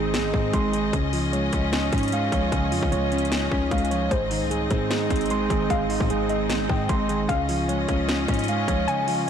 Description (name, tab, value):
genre	hip hop, trap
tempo	151 BPM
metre	4/4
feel	half-time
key	unclear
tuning	A4 = 440 Hz
part	mellow electric guitar	accompaniment	0.0-9.3 s	Ab2 to Eb4	-28 LUFS	left 3 dB	ensemble chorus, low-pass filter
part	clear chamber string section	sustained chords	0.0-9.3 s	C4 to Eb5	-30 LUFS	left 2 dB	none
part	mellow tine electric piano	arpeggios	0.0-9.3 s	Ab3 to C6	-26 LUFS	moving between right 2 dB and right 10 dB	auto-pan, low-pass filter, tape echo
part	hard-hitting 808-style bass	bass	0.0-8.9 s	Ab1 to Ab2	-30 LUFS	left 1 dB	none
part	trap drum kit	drums	0.1-9.2 s	hi-hat, kick drum, snare drum	-27 LUFS	left 1 dB	overdrive
part	warbly dusty pluck	second line	4.1-9.3 s	C5 to Ab5	-30 LUFS	left 4 dB	chorus, tape echo
room	light reverb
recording	blown-out, overdriven recording, overdrive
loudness	-21 LUFS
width	side -8 dB against mid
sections	0.0-9.3 A section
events	kick muted 8.9-9.3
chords	0.0 Ab; 0.9 Dbadd9; 4.1 Ab; 7.3 Dbadd9